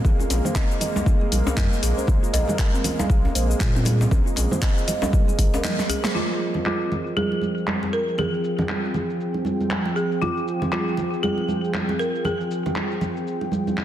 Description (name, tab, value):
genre	afro house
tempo	118 BPM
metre	4/4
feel	swing 59% on 16ths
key	F minor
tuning	A4 = 438 Hz
part	warm analog pad	sustained chords	0.0-13.8 s	F3 to G5	-28 LUFS	equal	lush chorus, sidechain pumping
part	kalimba	arpeggios	0.0-6.1 s	C4 to F5	-29 LUFS	right 3 dB	sidechain pumping, tape echo
part	warm sub bass	bass	0.0-5.5 s	Ab1 to Bb2	-22 LUFS	equal	sidechain pumping
part	electronic kick drum	drums	0.0-5.5 s	none	-20 LUFS	equal	overdrive
part	congas	percussion	0.0-13.8 s	none	-28 LUFS	right 2 dB	none
part	deep house drum kit	drums	0.1-13.8 s	cabasa, handclaps, hi-hat, snare drum, toms	-29 LUFS	left 1 dB	overdrive, low-pass filter on perc, low-pass filter on snare, low-pass filter on hats, low-pass filter on toms, low-pass filter on room
part	djembe	percussion	0.2-6.0 s	none	-30 LUFS	left 2 dB	none
part	folk marimba with hard mallets	melody	5.9-13.0 s	F4 to Bb4	-27 LUFS	right 1 dB	tape echo
room	moderate lush hall reverb, RT60 1.7 s, studio reverb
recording	dense, heavily limited modern master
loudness	-20 LUFS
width	side -11 dB against mid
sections	0.0-6.2 A section; 6.2-13.8 B section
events	break 5.6-6.2; drum fill 5.6-6.2; band accent 6.0; filter sweep on analog synth pad 6.2-13.8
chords	0.0 N.C.; 6.2 Fmadd9